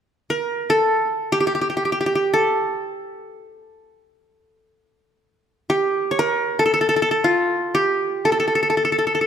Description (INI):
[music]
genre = arabic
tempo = free time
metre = none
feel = none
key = A maqam hijaz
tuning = A4 = 441 Hz
[part]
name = qanun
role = melody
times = 0.3-9.3 s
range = F4 to C#5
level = -18 LUFS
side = equal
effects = none
[sound]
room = light reverb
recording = none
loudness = -18 LUFS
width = side -8 dB against mid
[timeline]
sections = 0.0-9.3 A section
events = none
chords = none